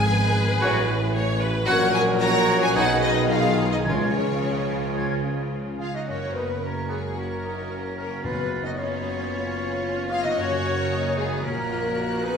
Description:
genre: classical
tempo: 112 BPM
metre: 4/4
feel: straight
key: F# major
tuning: A4 = 441 Hz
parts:
  - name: warm symphonic violin section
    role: melody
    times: 0.0-12.4 s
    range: C#5 to F#6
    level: -30 LUFS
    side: left 2 dB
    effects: none
  - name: warm symphonic violin section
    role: second line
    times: 0.0-12.4 s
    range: C#4 to E#5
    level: -30 LUFS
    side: left 2 dB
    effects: none
  - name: rich symphonic viola section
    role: accompaniment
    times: 0.0-12.4 s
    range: C#4 to C#5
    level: -31 LUFS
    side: equal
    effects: none
  - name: concert harp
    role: arpeggios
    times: 0.0-12.4 s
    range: F#2 to F#5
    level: -34 LUFS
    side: left 2 dB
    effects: none
  - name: rich symphonic cello section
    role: bass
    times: 0.0-12.4 s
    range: Ab2 to E#4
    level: -32 LUFS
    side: right 2 dB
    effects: none
  - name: rich symphonic double bass section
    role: bass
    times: 0.0-12.4 s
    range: F#1 to C#2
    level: -31 LUFS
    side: right 2 dB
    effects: none
  - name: warm tuba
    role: bass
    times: 0.0-12.4 s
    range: F#1 to C#2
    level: -32 LUFS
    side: right 2 dB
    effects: none
  - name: bright clarinet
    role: second line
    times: 0.6-5.2 s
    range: D#4 to F#4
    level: -34 LUFS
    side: right 2 dB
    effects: none
  - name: clear oboe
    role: second line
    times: 0.6-12.4 s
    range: B3 to D#5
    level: -35 LUFS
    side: right 1 dB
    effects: none
  - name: mellow hollow silver concert flute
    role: second line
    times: 0.6-12.4 s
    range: G#4 to G#6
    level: -33 LUFS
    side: left 1 dB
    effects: none
  - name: mellow French horn section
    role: sustained chords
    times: 0.6-12.4 s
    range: D#3 to F#4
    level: -31 LUFS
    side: left 2 dB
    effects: none
  - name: mellow trumpet section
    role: stabs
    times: 0.6-12.4 s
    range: F#4 to E#5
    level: -31 LUFS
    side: left 1 dB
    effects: none
  - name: timpani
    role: percussion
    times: 3.9-4.7, 8.2-9.0 s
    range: F#2 to C#3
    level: -33 LUFS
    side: right 1 dB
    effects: none
room: wet recital hall reverb, RT60 1.5 s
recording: recorded in a church or concert hall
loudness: -21 LUFS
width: side -6 dB against mid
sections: 0.0-6.1 A section; 6.1-12.4 B section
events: none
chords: 0.0 Fdim/Ab; 0.6 F#m/A; 1.7 F#/A#; 2.8 G#m/B; 3.9 C#; 6.1 F#; 8.2 C#7/F#; 10.4 F#; 11.4 F#/A#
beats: 0.08 0.61 1.15 | 1.68 2.22 2.76 3.31 | 3.86 4.42 4.98 5.54 | 6.09 6.63 7.17 7.71 | 8.24 8.78 9.31 9.84 | 10.38 10.91 11.44 11.98

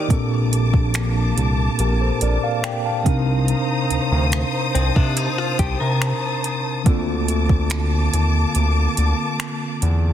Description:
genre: contemporary R&B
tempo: 71 BPM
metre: 4/4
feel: straight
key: Bb major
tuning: A4 = 441 Hz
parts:
  - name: mellow tine electric piano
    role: accompaniment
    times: 0.0-10.1 s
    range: Bb2 to A5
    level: -23 LUFS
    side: equal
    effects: medium stereo tremolo
  - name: warm studio string section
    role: sustained chords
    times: 0.0-10.1 s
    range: Bb3 to Eb6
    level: -26 LUFS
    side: equal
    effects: sidechain pumping
  - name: direct-recorded clean electric guitar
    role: arpeggios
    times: 0.0-6.8 s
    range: C4 to Bb4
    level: -28 LUFS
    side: left 7 dB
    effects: tape echo
  - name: smooth synth bass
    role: bass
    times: 0.0-10.1 s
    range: Bb1 to Eb3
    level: -20 LUFS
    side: equal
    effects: none
  - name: smooth R&B drum kit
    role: drums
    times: 0.1-10.0 s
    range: finger snaps, hi-hat, kick drum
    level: -21 LUFS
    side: equal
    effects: overdrive, soft clipping on snare
room: digital ambience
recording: dense, heavily limited modern master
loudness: -17 LUFS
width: side -10 dB against mid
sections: 0.0-10.1 A section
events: none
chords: 0.1 Bbmaj7; 3.1 Cm7; 6.9 Bbmaj7/D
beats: | 0.10 0.95 1.79 2.64 | 3.48 4.33 5.17 6.02 | 6.86 7.71 8.55 9.40

